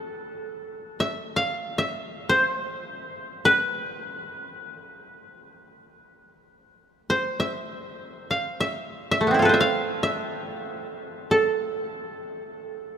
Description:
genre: japanese traditional, Japanese chamber music.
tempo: free time.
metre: none.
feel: none.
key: A hirajoshi.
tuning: A4 = 438 Hz.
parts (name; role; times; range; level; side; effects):
koto; solo; 0.0-13.0 s; A3 to F5; -24 LUFS; equal; none.
room: moderate cathedral reverb, RT60 7.5 s.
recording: minimal, uncompressed stereo recording.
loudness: -22 LUFS.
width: side -8 dB against mid.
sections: 0.0-13.0 A section.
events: none.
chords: none.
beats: free time.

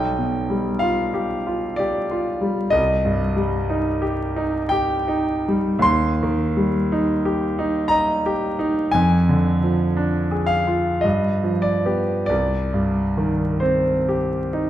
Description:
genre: classical, romantic nocturne for solo piano.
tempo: 44-64 BPM.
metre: 3/4.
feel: rubato.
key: C minor.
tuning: A4 = 440 Hz.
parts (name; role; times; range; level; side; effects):
clear concert grand piano; solo; 0.0-14.7 s; B1 to C6; -18 LUFS; equal; none.
room: wet recital hall reverb, RT60 1.6 s.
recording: dark, warm production, vinyl crackle.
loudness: -18 LUFS.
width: side -12 dB against mid.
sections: 0.0-14.7 A section.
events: none.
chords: 0.0 G7/B; 2.7 Cm; 5.8 Cm/Eb; 8.9 Ddim/F; 11.0 G7; 12.3 Cm.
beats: 0.83 1.79 | 2.74 3.69 4.70 | 5.85 6.90 7.91 | 8.94 9.96 11.04 | 12.30 13.63.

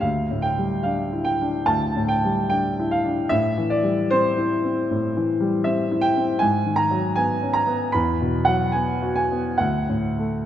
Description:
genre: classical, impressionist solo piano.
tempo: 68-81 BPM.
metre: 4/4.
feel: rubato.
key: unclear.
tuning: A4 = 440 Hz.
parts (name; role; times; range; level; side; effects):
clear concert grand piano; solo; 0.0-10.5 s; D2 to B5; -20 LUFS; equal; none.
room: wet concert hall reverb, RT60 2.3 s.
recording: none.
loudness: -20 LUFS.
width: side -10 dB against mid.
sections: 0.0-10.5 A section.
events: none.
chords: 0.0 Dsus24; 3.3 Am7; 6.4 G#m7; 7.9 Esus2; 9.6 D.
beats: | 0.03 0.87 1.69 2.52 | 3.33 4.13 4.91 5.66 | 6.41 7.17 7.94 8.74 | 9.61.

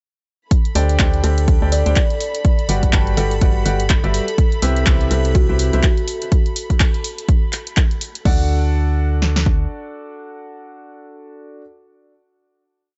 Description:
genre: piano house.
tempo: 124 BPM.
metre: 4/4.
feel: swing 58% on 16ths.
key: D mixolydian.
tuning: A4 = 440 Hz.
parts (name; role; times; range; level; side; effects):
dark studio violin section; sustained chords; 0.5-8.3 s; A4 to B5; -33 LUFS; equal; sidechain pumping.
punchy analog drum machine; drums; 0.5-9.6 s; kick drum, snare drum; -18 LUFS; equal; none.
punchy analog drum machine; drums; 0.5-8.4 s; crash cymbal, handclaps, hi-hat; -27 LUFS; equal; overdrive.
bright upright piano; riff; 0.8-11.6 s; C3 to A5; -27 LUFS; equal; sidechain pumping, digital delay.
organ-like FM bass; bass; 0.8-9.7 s; G1 to D2; -20 LUFS; equal; tube saturation, sidechain pumping.
buzzing kalimba; melody; 1.2-5.5 s; F#4 to D5; -29 LUFS; equal; digital delay.
room: small room ambience.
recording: nothing above 7.9 kHz.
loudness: -17 LUFS.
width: mono.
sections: 0.5-8.3 groove; 8.3-12.1 final chord.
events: none.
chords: 0.5 D7sus4; 2.4 Gmaj7; 4.4 Cmaj7; 6.1 Asus2; 8.3 D.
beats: | 0.51 0.99 1.48 1.96 | 2.45 2.93 3.42 3.90 | 4.38 4.87 5.35 5.83 | 6.32 6.80 7.29 7.77 | 8.25 8.74 9.22 9.71 | 10.19 10.67 11.16.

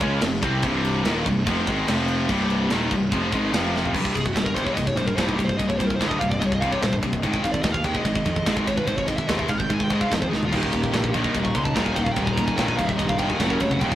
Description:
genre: heavy metal.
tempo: 146 BPM.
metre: 4/4.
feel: straight.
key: C phrygian.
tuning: A4 = 439 Hz.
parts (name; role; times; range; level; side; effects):
heavy high-gain guitar; riff; 0.0-13.9 s; C2 to Db4; -27 LUFS; left 3 dB; distortion.
heavy high-gain guitar; riff; 0.0-13.9 s; C2 to Db4; -32 LUFS; right 6 dB; distortion.
high-gain distorted guitar; riff; 0.0-4.0, 10.5-13.9 s; C2 to Db4; -27 LUFS; right 1 dB; distortion.
fuzz picked electric bass; bass; 0.0-13.9 s; C1 to Ab2; -26 LUFS; equal; overdrive.
tight metal drum kit; drums; 0.0-13.9 s; crash cymbal, kick drum, ride cymbal, snare drum, toms; -26 LUFS; equal; none.
high-gain lead guitar; melody; 4.2-13.9 s; Eb4 to Db6; -28 LUFS; right 1 dB; distortion.
room: moderate studio reverb, RT60 0.5 s.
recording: rough rehearsal-room recording, tube saturation.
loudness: -20 LUFS.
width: side -12 dB against mid.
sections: 0.0-3.9 A section; 3.9-13.9 B section.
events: drum fill 3.7, 10.3; lead electric guitar solo 3.9-13.9.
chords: 0.0 F5; 0.6 Cm; 1.9 F5; 2.3 Cm; 3.5 F5; 3.9 C5; 7.2 Ab5; 10.5 Eb; 13.4 F#5.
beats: 0.23 | 0.64 1.05 1.47 1.88 | 2.29 2.71 3.12 3.53 | 3.94 4.35 4.76 5.18 | 5.59 6.00 6.41 6.82 | 7.23 7.65 8.06 8.47 | 8.88 9.29 9.70 10.12 | 10.53 10.94 11.35 11.76 | 12.17 12.58 13.00 13.41 | 13.82.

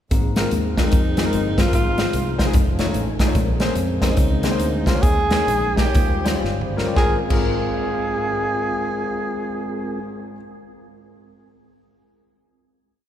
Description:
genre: uptempo gospel.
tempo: 111-148 BPM.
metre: 4/4.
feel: swing 63% on 8ths.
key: Ab major.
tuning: A4 = 439 Hz.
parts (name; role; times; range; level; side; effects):
clear grand piano; accompaniment; 0.1-10.4 s; Ab1 to Eb5; -26 LUFS; left 4 dB; none.
mellow French horn section; sustained chords; 0.1-10.0 s; C#3 to C5; -34 LUFS; left 1 dB; none.
mellow tonewheel organ; sustained chords; 0.1-10.0 s; F3 to A5; -30 LUFS; right 1 dB; fast rotary speaker, chorus vibrato.
fingered electric bass; bass; 0.1-10.3 s; F1 to F2; -26 LUFS; equal; none.
natural country drum kit; drums; 0.1-7.4 s; crash cymbal, hi-hat, kick drum, snare drum, toms; -20 LUFS; equal; none.
breathy tenor saxophone; melody; 0.8-10.3 s; Eb4 to Ab4; -24 LUFS; equal; none.
room: wet cathedral reverb, RT60 3.9 s.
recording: recorded in a church or concert hall.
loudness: -18 LUFS.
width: side -10 dB against mid.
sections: 0.1-7.0 breakdown; 7.0-11.3 final chord.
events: tonewheel organ fill 2.1-3.4; slowing down 3.4-7.0; drum fill 6.4-7.0.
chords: 0.1 Ab69; 1.7 Fm7/Ab; 2.5 F7alt; 3.4 Bbm9; 5.0 Eb7sus4; 5.9 Eb13; 7.0 Ab69.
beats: | 0.11 0.52 0.92 1.33 | 1.73 2.14 2.54 2.95 | 3.35 3.76 4.17 4.59 | 5.03 5.48 5.95 6.44 | 6.97 7.51 8.05 8.59 | 9.13 9.67 10.21.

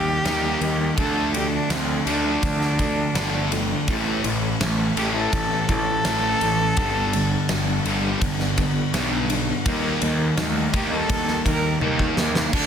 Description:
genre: quiet-loud alternative rock.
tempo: 83 BPM.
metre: 4/4.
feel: straight.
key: unclear.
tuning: A4 = 439 Hz.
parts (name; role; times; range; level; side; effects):
warm cello; melody; 0.0-12.7 s; A3 to Bb4; -26 LUFS; equal; analog delay.
electric guitar through a small old amp; arpeggios; 0.0-12.5 s; G2 to E4; -29 LUFS; left 1 dB; tremolo.
fuzz guitar; riff; 0.0-12.7 s; G2 to Eb4; -25 LUFS; equal; distortion.
fuzz picked electric bass; bass; 0.0-12.7 s; G1 to Eb2; -27 LUFS; equal; overdrive.
big rock drum kit; drums; 0.3-12.7 s; crash cymbal, kick drum, ride cymbal, snare drum, toms; -25 LUFS; equal; soft clipping on kick.
room: little or no reverb.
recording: dense, heavily limited modern master.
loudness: -20 LUFS.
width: side -8 dB against mid.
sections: 0.0-12.5 A section.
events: cello solo 0.0-12.5; drum fill 11.8-12.5.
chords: 0.0 Eb; 1.0 Dm; 3.9 A; 6.8 G; 9.7 Eb.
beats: 0.26 | 0.98 1.71 2.44 3.16 | 3.89 4.61 5.33 6.06 | 6.78 7.50 8.22 8.94 | 9.66 10.38 11.10 11.81 | 12.53.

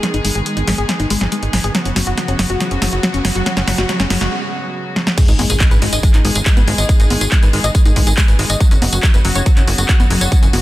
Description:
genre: uplifting trance.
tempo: 140 BPM.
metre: 4/4.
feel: straight.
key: G# minor.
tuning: A4 = 439 Hz.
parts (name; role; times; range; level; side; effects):
warm studio string section; sustained chords; 0.0-10.6 s; C#3 to G#4; -24 LUFS; equal; sidechain pumping.
wide unison pluck; arpeggios; 0.0-10.6 s; F#3 to D#5; -22 LUFS; left 3 dB; sidechain pumping, tape echo.
punchy analog drum machine; drums; 0.0-10.6 s; congas, crash cymbal, handclaps, hi-hat, snare drum, tambourine; -19 LUFS; equal; sidechain pumping on hats, sidechain pumping on cymbals, sidechain pumping on perc.
riser and impact; sound effects; 1.7-6.9 s; none; -27 LUFS; right 1 dB; none.
tight sequencer bass; bass; 0.1-10.6 s; F#1 to G#1; -19 LUFS; equal; sidechain pumping.
electronic kick drum; drums; 5.2-10.4 s; none; -12 LUFS; equal; overdrive.
room: digital ambience.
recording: dense, heavily limited modern master.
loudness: -12 LUFS.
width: side -16 dB against mid.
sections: 0.0-5.2 A section; 5.2-10.6 B section.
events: build-up 0.0-5.2; drum fill 0.0-4.3, 5.0; filter sweep on synth pluck 0.0-5.2; break 4.3-5.2; drop 5.2-10.6; impact 5.2-6.9.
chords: 0.0 G#m; 1.7 F#sus4; 5.2 G#m; 8.6 F#sus4.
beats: | 0.03 0.46 0.89 1.32 | 1.75 2.18 2.60 3.03 | 3.46 3.89 4.32 4.75 | 5.18 5.61 6.03 6.46 | 6.89 7.32 7.75 8.18 | 8.61 9.03 9.46 9.89 | 10.32.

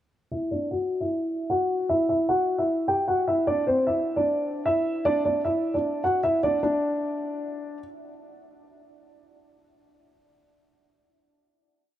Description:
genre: hip hop, trap.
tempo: 152 BPM.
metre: 4/4.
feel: half-time.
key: unclear.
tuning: A4 = 440 Hz.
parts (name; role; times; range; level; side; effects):
dark concert grand piano; solo; 0.3-7.8 s; C4 to G5; -23 LUFS; equal; low-pass filter.
room: light reverb, small room ambience.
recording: none.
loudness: -23 LUFS.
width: side -12 dB against mid.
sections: 0.3-6.6 breakdown; 6.6-9.8 final note.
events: filter sweep on grand piano 0.3-6.6.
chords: 0.3 Dadd9; 1.9 Emadd9; 3.5 Cadd9 (rootless); 6.6 N.C..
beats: | 0.31 0.71 1.10 1.50 | 1.89 2.29 2.68 3.08 | 3.47 3.87 4.26 4.66 | 5.05 5.45 5.84 6.24 | 6.63 7.03 7.42.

